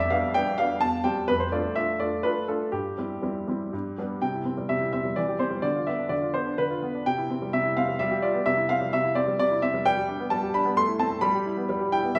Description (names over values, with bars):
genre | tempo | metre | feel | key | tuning
classical-period piano sonatina | 128 BPM | 3/4 | rubato | C major | A4 = 439 Hz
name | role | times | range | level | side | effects
clear baby grand piano | solo | 0.0-12.2 s | E2 to C6 | -26 LUFS | equal | none
room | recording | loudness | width
wet recital hall reverb, RT60 1.3 s | recorded in a church or concert hall | -26 LUFS | mono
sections
0.0-4.2 A section; 4.2-12.2 B section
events
none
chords
0.0 G7/F; 0.8 C/E; 1.3 Dm/F; 2.7 C/G; 3.7 G; 4.2 C; 5.2 C/E; 5.6 Dm13; 7.1 C; 8.0 G7; 8.5 C; 9.8 G; 10.8 Am; 11.2 Em/G